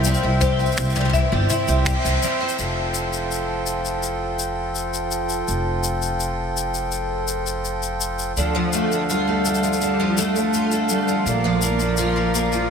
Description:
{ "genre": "folktronica", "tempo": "83 BPM", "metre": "4/4", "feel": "straight", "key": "F major", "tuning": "A4 = 439 Hz", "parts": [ { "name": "buzzing marimba with medium hard mallets", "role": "second line", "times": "0.0-1.5 s", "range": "C5 to E5", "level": "-29 LUFS", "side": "left 4 dB", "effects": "analog delay" }, { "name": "pedal harmonium", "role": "sustained chords", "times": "0.0-12.7 s", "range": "D3 to G5", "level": "-24 LUFS", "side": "right 1 dB", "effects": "none" }, { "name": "picked twelve-string acoustic guitar", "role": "arpeggios", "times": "0.0-2.5, 8.4-12.7 s", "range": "D3 to C5", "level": "-26 LUFS", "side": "equal", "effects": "ensemble chorus, ping-pong delay" }, { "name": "upright bass", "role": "bass", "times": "0.0-12.7 s", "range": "F1 to D2", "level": "-26 LUFS", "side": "equal", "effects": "none" }, { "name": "jazz brush drum kit", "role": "drums", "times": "0.0-12.7 s", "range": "finger snaps, shaker, toms", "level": "-28 LUFS", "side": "left 4 dB", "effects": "none" }, { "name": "kick drum", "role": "drums", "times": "0.4-2.0 s", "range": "none", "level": "-26 LUFS", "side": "equal", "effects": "none" }, { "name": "dark cello", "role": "melody", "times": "8.4-12.7 s", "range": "F3 to A3", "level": "-23 LUFS", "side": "equal", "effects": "ping-pong delay" } ], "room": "wet huge ambient reverb, RT60 7.3 s", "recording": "dreamy mix soaked in reverb", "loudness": "-19 LUFS", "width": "side -6 dB against mid", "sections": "0.0-2.6 A section; 2.6-12.7 B section", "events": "band accent 1.9-2.2", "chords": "0.0 C; 2.6 Fadd9; 8.4 Dm; 11.3 Bb" }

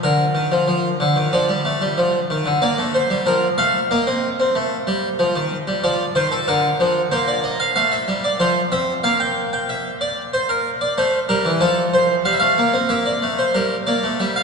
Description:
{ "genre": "classical, baroque-style two-part invention for harpsichord", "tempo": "93 BPM", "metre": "4/4", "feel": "straight", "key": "Bb major", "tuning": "A4 = 440 Hz", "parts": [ { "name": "harpsichord", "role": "solo", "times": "0.0-14.4 s", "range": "D3 to G5", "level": "-17 LUFS", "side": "equal", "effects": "none" } ], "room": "wet cathedral reverb, RT60 5.2 s", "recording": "recorded in a church or concert hall, nothing above 10.3 kHz", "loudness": "-17 LUFS", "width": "side -5 dB against mid", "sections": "0.0-2.6 A section; 2.6-12.9 B section; 12.9-14.4 A section", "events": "none", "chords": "0.0 Bb/D; 1.3 N.C.; 2.6 Bb; 3.9 Cm7/Bb; 5.2 F7; 6.5 Bb/D; 7.8 F; 9.0 Gm7/Bb; 10.3 C7/Bb; 11.6 F; 12.9 Gm" }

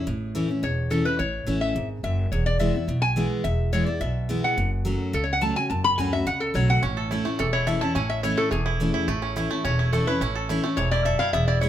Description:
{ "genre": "bluegrass", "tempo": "213 BPM", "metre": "4/4", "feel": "straight", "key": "A major", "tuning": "A4 = 439 Hz", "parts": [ { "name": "lap resonator guitar", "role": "melody", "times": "0.0-11.7 s", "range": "G#4 to B5", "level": "-26 LUFS", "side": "left 2 dB", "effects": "none" }, { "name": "picked steel-string acoustic guitar", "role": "accompaniment", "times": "0.0-11.7 s", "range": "E2 to F#4", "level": "-26 LUFS", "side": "left 1 dB", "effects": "none" }, { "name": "upright bass", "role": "bass", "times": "0.1-11.7 s", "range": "E1 to D2", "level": "-27 LUFS", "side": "right 1 dB", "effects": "none" }, { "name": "bluegrass banjo", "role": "melody", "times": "6.8-11.7 s", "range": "E3 to A4", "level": "-29 LUFS", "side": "right 5 dB", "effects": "none" } ], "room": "light reverb", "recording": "minimal, uncompressed stereo recording", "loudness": "-22 LUFS", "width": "side -11 dB against mid", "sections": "0.0-11.7 A section", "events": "none", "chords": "0.0 A; 2.3 E; 4.6 F#m; 6.8 A" }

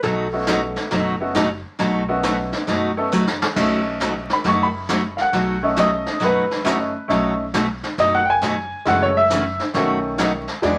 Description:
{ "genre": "country, western swing", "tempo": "136 BPM", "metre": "4/4", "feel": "swing 66% on 8ths", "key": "B mixolydian", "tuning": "A4 = 440 Hz", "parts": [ { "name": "hollow-body jazz guitar", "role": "second line", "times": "0.0-1.3 s", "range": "A4", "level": "-30 LUFS", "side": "equal", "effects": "none" }, { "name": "picked steel-string acoustic guitar", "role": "accompaniment", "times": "0.0-10.8 s", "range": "B2 to G#4", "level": "-24 LUFS", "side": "equal", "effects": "none" }, { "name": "upright bass", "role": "bass", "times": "0.0-10.8 s", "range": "F#1 to E2", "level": "-34 LUFS", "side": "equal", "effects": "none" }, { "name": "vintage brush drum kit", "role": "drums", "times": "0.0-10.8 s", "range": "brushed snare drum, crash cymbal, hi-hat, kick drum, snare drum", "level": "-28 LUFS", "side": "equal", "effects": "none" }, { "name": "bright upright piano", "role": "accompaniment", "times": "0.3-10.8 s", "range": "D#3 to C#6", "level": "-22 LUFS", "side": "equal", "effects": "none" } ], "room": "moderate studio ambience, RT60 0.4 s", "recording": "vinyl crackle", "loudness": "-20 LUFS", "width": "mono", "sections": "0.0-3.6 A section; 3.6-10.8 A section", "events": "hollow-body jazz guitar solo 0.0-3.6; drum fill 3.1-3.6; upright piano solo 3.6-10.8", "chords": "0.0 B9; 8.9 F#m7; 9.7 B9" }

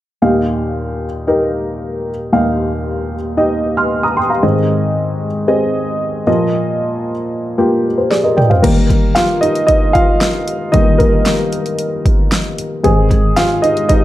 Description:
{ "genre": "piano-driven pop", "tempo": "114 BPM", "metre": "4/4", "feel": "straight", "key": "Eb major", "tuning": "A4 = 440 Hz", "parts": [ { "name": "dark upright piano", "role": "accompaniment", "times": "0.2-14.0 s", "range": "Eb2 to F6", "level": "-14 LUFS", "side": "equal", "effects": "none" }, { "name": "deep house drum kit", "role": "drums", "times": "8.1-14.0 s", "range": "crash cymbal, hi-hat, kick drum, snare drum, toms", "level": "-14 LUFS", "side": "equal", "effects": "none" } ], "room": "moderate large studio reverb, RT60 1.0 s, digital ambience", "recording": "dark, warm production", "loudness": "-12 LUFS", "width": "side -14 dB against mid", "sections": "0.2-8.6 A section; 8.6-14.0 B section", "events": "drum fill 8.1-8.6; upright piano solo 8.6-14.0", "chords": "0.2 Ebadd9; 4.4 Ab; 6.3 Bbsus4; 8.6 Ebadd9; 12.8 Ab" }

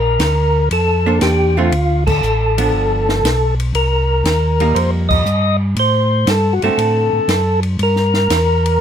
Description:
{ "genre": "soul jazz organ trio", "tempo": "119 BPM", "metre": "4/4", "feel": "swing 69% on 8ths", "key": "unclear", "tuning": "A4 = 440 Hz", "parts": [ { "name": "percussive tonewheel organ", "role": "melody", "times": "0.0-8.8 s", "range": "F4 to Eb5", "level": "-16 LUFS", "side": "equal", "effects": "slow rotary speaker, overdrive" }, { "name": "mellow tonewheel organ", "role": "bass", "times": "0.0-8.8 s", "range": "G1 to A2", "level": "-16 LUFS", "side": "equal", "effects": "slow rotary speaker" }, { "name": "compact cocktail drum kit", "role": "drums", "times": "0.2-8.7 s", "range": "crash cymbal, hi-hat, kick drum, ride cymbal, snare drum", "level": "-23 LUFS", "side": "equal", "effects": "none" }, { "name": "archtop guitar, miked and amplified", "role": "accompaniment", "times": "1.1-7.3 s", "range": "D3 to C5", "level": "-20 LUFS", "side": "right 5 dB", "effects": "none" } ], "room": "little or no reverb", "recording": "close, detailed microphones", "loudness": "-13 LUFS", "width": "side -9 dB against mid", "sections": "0.0-8.8 A section", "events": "band accent 2.0, 5.0", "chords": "0.0 Bbmaj9; 1.7 Dm; 2.7 G7; 3.7 Cm7; 5.8 Gsus24; 6.8 D7; 7.8 Gm" }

